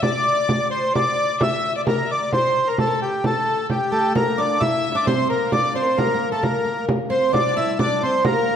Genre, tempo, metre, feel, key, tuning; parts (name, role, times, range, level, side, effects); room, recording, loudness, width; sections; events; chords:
medieval dance; 132 BPM; 3/4; straight; A4 = 440 Hz
accordion; melody; 0.0-8.6 s; G4 to E5; -21 LUFS; equal
rich fiddle; second line; 0.0-8.6 s; G4 to E5; -26 LUFS; left 6 dB
frame drum; percussion; 0.0-8.5 s; -24 LUFS; right 1 dB
oud; second line; 3.9-8.6 s; A3 to E4; -24 LUFS; right 4 dB
wet recital hall reverb, RT60 1.6 s; dark, warm production; -18 LUFS; side -8 dB against mid
0.0-4.2 A section; 4.2-8.6 B section